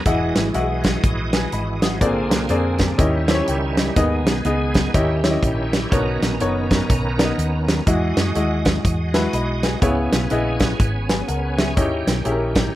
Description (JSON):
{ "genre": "uptempo gospel", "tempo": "123 BPM", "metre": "4/4", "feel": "swing 61% on 8ths", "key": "unclear", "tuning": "A4 = 440 Hz", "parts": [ { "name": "bright tonewheel organ", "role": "sustained chords", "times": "0.0-12.8 s", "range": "D3 to D#5", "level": "-26 LUFS", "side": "right 2 dB", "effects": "slow rotary speaker, chorus vibrato" }, { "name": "clear baby grand piano", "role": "accompaniment", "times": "0.1-12.8 s", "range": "A#2 to D#6", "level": "-23 LUFS", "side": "left 2 dB", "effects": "none" }, { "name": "hollow-body short-scale fingered electric bass", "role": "bass", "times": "0.1-12.7 s", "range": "E1 to F#2", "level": "-24 LUFS", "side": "equal", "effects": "none" }, { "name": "modern studio drum kit", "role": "drums", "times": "0.1-12.6 s", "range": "hi-hat, kick drum, snare drum", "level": "-20 LUFS", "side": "equal", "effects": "none" } ], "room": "moderate studio reverb, RT60 0.5 s", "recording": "rough home demo mix", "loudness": "-17 LUFS", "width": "side -14 dB against mid", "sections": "0.0-12.8 A section", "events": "none", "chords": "0.1 Emaj9; 2.0 A#9; 3.0 D#7b9; 4.0 G#m; 4.9 D#7b9; 5.9 Bmaj9; 7.9 Emaj9; 9.8 C#m7; 11.8 D#7b9" }